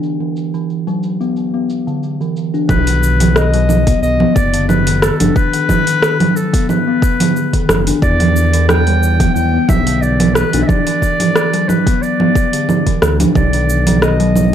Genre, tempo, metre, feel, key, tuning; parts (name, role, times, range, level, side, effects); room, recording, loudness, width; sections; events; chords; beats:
organic downtempo; 90 BPM; 4/4; swing 54% on 16ths; A4 = 440 Hz
steel tongue drum; arpeggios; 0.0-14.5 s; D3 to D4; -17 LUFS; left 2 dB; vintage 12-bit sampler grit, analog delay
deep house drum kit; drums; 0.0-14.5 s; cabasa, congas, hi-hat, rim click; -16 LUFS; right 3 dB; overdrive, low-pass filter on perc, low-pass filter on hats, low-pass filter on snare, low-pass filter on room
warm clarinet; melody; 2.7-14.5 s; A4 to G5; -18 LUFS; left 2 dB; analog delay
smooth synth bass; bass; 2.7-14.5 s; F#1 to E2; -15 LUFS; equal
electronic kick drum; drums; 2.7-13.5 s; -15 LUFS; equal; overdrive
little or no reverb; dry, gritty hardware recording; -11 LUFS; side -9 dB against mid
0.0-2.7 A section; 2.7-14.5 B section
0.0 D69; 2.7 B; 8.0 Em7; 10.7 D69; 13.4 B
| 0.02 0.69 1.35 2.02 | 2.69 3.35 4.02 4.69 | 5.36 6.02 6.69 7.36 | 8.02 8.69 9.36 10.02 | 10.69 11.36 12.02 12.69 | 13.36 14.02